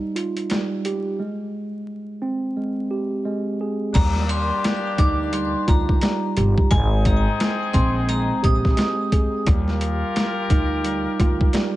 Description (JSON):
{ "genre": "hip hop, boom-bap hip-hop", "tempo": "87 BPM", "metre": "4/4", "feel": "swing 60% on 16ths", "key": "Eb major", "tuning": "A4 = 441 Hz", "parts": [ { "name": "mellow tine electric piano", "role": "accompaniment", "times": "0.0-11.8 s", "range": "G3 to Ab4", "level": "-25 LUFS", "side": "right 2 dB", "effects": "cassette tape, high-pass filter, low-pass filter" }, { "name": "boom bap sampler-style drum kit", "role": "drums", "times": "0.2-11.7 s", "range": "crash cymbal, hi-hat, kick drum, snare drum", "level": "-21 LUFS", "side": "equal", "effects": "overdrive" }, { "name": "vibraphone with hard mallets", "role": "melody", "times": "3.9-9.4 s", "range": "Ab5 to Eb6", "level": "-27 LUFS", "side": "left 2 dB", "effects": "high-pass filter, low-pass filter, digital delay" }, { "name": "clear horn section", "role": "stabs", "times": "3.9-11.8 s", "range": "Bb3 to Bb4", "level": "-28 LUFS", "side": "left 3 dB", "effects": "high-pass filter, low-pass filter, digital delay" }, { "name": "upright bass", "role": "bass", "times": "4.0-11.5 s", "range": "G1 to Eb2", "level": "-22 LUFS", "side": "equal", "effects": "none" } ], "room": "studio ambience", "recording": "vinyl crackle, nothing above 11.0 kHz", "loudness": "-19 LUFS", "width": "side -16 dB against mid", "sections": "0.0-4.0 A section; 4.0-11.8 B section", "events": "none", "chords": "0.0 Ebadd9; 1.2 Abmaj7; 4.0 Ebmaj9; 6.7 Abmaj9; 9.5 Ebmaj9" }